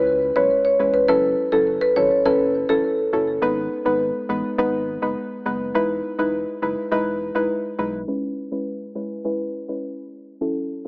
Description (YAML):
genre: dancehall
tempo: 103 BPM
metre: 4/4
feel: straight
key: unclear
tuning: A4 = 440 Hz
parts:
  - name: marimba with medium mallets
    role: melody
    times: 0.0-2.8 s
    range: A4 to C#5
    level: -19 LUFS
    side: equal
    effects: tape echo
  - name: soft round pluck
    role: accompaniment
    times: 0.0-10.9 s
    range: F#3 to B4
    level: -22 LUFS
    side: equal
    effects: chorus
  - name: sub bass with octave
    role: bass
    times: 0.0-8.0 s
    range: E1 to C#2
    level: -38 LUFS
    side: equal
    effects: none
room: light reverb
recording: low-pass filter, AM radio sound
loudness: -19 LUFS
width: side -31 dB against mid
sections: 0.0-8.1 A section; 8.1-10.9 B section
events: filter sweep 8.1-10.9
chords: 0.0 C#m7; 1.1 F#m7; 3.4 G#m; 5.7 Emaj7; 8.1 C#m7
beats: 0.51 | 1.09 1.67 2.25 2.84 | 3.42 4.00 4.58 5.17 | 5.75 6.33 6.91 7.50 | 8.08 8.66 9.24 9.83 | 10.41